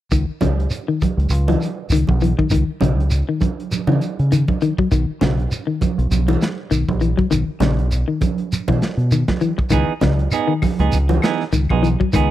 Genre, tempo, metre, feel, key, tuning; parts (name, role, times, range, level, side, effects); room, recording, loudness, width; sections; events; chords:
afrobeat; 100 BPM; 4/4; swing 56% on 16ths; C# dorian; A4 = 439 Hz
clean electric guitar; arpeggios; 0.1-12.3 s; C#3 to F#3; -20 LUFS; left 5 dB
deep dub fingered electric bass; bass; 0.1-12.3 s; A#1 to C#3; -18 LUFS; equal
crunchy breakbeat drum kit; drums; 0.1-12.3 s; hi-hat, kick drum, snare drum; -22 LUFS; equal
shekere; percussion; 0.1-12.3 s; -25 LUFS; right 1 dB
congas; percussion; 0.4-11.8 s; -24 LUFS; right 6 dB
clean electric guitar; stabs; 9.7-12.3 s; E3 to G#4; -22 LUFS; right 8 dB
claves; percussion; 9.7-12.3 s; -33 LUFS; left 7 dB
little or no reverb; dry, close 1970s-style studio recording; -16 LUFS; side -13 dB against mid
0.1-12.3 A section
0.1 C#sus2; 4.9 B; 9.7 C#m9